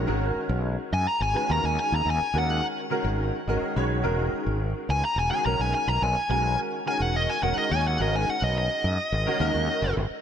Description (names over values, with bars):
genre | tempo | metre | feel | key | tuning
electric jazz fusion | 212 BPM (eighths) | 7/8 | straight | unclear | A4 = 440 Hz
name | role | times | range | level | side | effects
clear baby grand piano | accompaniment | 0.0-10.0 s | Eb3 to Cb6 | -29 LUFS | equal | ensemble chorus
fretless electric bass | bass | 0.0-10.1 s | E1 to Gb2 | -27 LUFS | equal | none
bluesy overdriven lead guitar | melody | 0.9-9.9 s | D#5 to Bb5 | -26 LUFS | left 1 dB | distortion
room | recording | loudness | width
moderate lush hall reverb, RT60 2.4 s | bright 1980s-style digital production | -23 LUFS | side -8 dB against mid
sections
0.0-10.2 A section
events
lead electric guitar solo 0.0-10.2; grand piano fill 3.2-4.0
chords
0.1 Abm9; 4.0 Emaj9; 8.0 Abm9